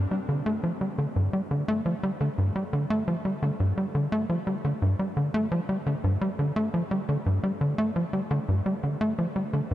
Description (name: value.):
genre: ambient.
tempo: 86 BPM.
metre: 4/4.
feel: straight.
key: unclear.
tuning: A4 = 439 Hz.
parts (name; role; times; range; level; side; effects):
tight sequencer bass; solo; 0.0-9.7 s; G2 to A3; -25 LUFS; equal; tape echo.
room: moderate huge ambient reverb, RT60 9.0 s.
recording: in a vast, echoing space, cassette tape.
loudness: -25 LUFS.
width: side -14 dB against mid.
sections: 0.0-9.7 A section.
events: none.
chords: none.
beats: 0.64 1.33 2.03 | 2.73 3.42 4.12 4.82 | 5.52 6.22 6.91 7.61 | 8.31 9.01 9.70.